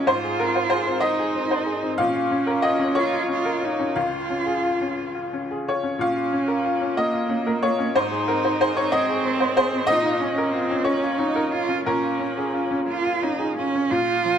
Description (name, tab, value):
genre	neoclassical piano and strings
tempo	58-63 BPM (dotted quarters)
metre	6/8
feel	rubato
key	Bb minor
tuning	A4 = 440 Hz
part	rich cello	second line	0.0-14.4 s	Bb3 to F4	-25 LUFS	right 4 dB	none
part	bright upright piano	accompaniment	0.0-14.4 s	Bb1 to F5	-22 LUFS	left 2 dB	none
room	moderate recital hall reverb, RT60 1.7 s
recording	close, detailed microphones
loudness	-20 LUFS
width	side -8 dB against mid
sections	0.0-13.9 A section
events	none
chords	0.1 Ab; 2.0 Bbm; 4.0 Db; 6.0 Bbm; 8.0 Ab; 9.9 Bbm; 11.9 Bbm7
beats	| 0.07 1.03 | 1.99 2.96 | 3.97 4.99 | 6.00 6.97 | 7.96 8.93 | 9.88 10.85 | 11.86 12.88 | 13.91